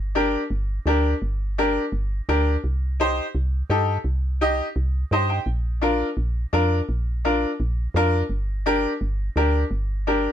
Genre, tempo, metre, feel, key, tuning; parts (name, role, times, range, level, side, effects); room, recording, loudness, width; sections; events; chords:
latin, cumbia; 170 BPM; 4/4; straight; G minor; A4 = 439 Hz
woody FM bass; bass; 0.0-10.3 s; G1 to G2; -23 LUFS; equal
bright upright piano; accompaniment; 0.2-10.3 s; D4 to G5; -21 LUFS; left 1 dB
light reverb; close, detailed microphones; -21 LUFS; side -10 dB against mid
0.0-10.3 A section
upright piano fill 4.9-5.5
0.0 Gm; 2.6 Cm; 5.5 Bb; 8.3 Gm